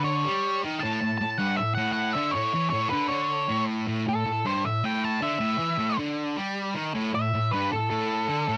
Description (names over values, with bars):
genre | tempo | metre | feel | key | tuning
rock | 157 BPM | 4/4 | straight | A mixolydian | A4 = 441 Hz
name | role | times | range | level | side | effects
octave-fuzz lead guitar | melody | 0.0-8.6 s | A4 to A5 | -29 LUFS | equal | distortion, cassette tape
fuzz guitar | riff | 0.0-8.6 s | G2 to G3 | -30 LUFS | equal | distortion, cassette tape
room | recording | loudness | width
little or no reverb | home recording on cassette | -27 LUFS | mono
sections
0.0-3.9 A section; 3.9-8.6 B section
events
lead electric guitar solo 3.9-8.6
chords
0.0 A5